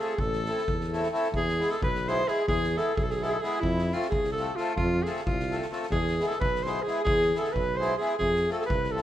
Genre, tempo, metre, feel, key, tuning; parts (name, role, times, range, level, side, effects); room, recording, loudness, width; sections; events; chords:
balkan folk, Balkan wedding band; 263 BPM (eighths); 5/8; straight; A4 = 441 Hz
clear alto saxophone; melody; 0.0-9.0 s; E4 to C5; -29 LUFS; left 1 dB
mellow clarinet; second line; 0.0-9.0 s; E4 to C5; -34 LUFS; right 4 dB
accordion; accompaniment; 0.0-9.0 s; G#3 to A4; -32 LUFS; left 1 dB
mellow tuba; bass; 0.2-9.0 s; A1 to F2; -32 LUFS; equal
street-band drum kit; percussion; 0.2-9.0 s; kick drum, snare drum; -34 LUFS; equal
light reverb; minimal, uncompressed stereo recording; -25 LUFS; side -12 dB against mid
0.0-1.3 A section; 1.3-9.0 A section
0.2 Am; 1.3 E; 3.6 F; 5.9 E; 8.2 F